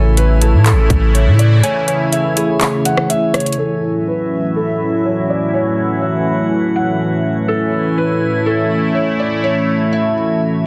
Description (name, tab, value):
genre	hip hop, atmospheric cloud-rap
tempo	123 BPM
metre	4/4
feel	half-time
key	F# minor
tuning	A4 = 440 Hz
part	felt-muted upright piano	melody	0.0-10.6 s	A4 to F#5	-23 LUFS	equal	low-pass filter, delay
part	sweeping resonant pad	sustained chords	0.0-10.7 s	A2 to E4	-19 LUFS	equal	chorus, sidechain pumping, low-pass filter
part	concert harp	arpeggios	0.0-5.5 s	C#4 to G#5	-28 LUFS	equal	delay
part	warm 808-style bass	bass	0.0-1.6 s	A1 to A2	-13 LUFS	equal	none
part	drifting glass-harmonics texture	texture	0.0-10.7 s	A3 to G#5	-30 LUFS	equal	chorus, built-in reverb
part	trap drum kit	drums	0.2-3.6 s	handclaps, hi-hat, kick drum, rim click	-20 LUFS	equal	none
room	moderate digital room reverb, RT60 1.1 s, digital ambience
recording	dense, heavily limited modern master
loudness	-15 LUFS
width	mono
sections	0.0-3.6 A section; 3.6-10.7 B section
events	break 1.6-3.6; filter sweep 3.6-10.7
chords	0.0 Amaj7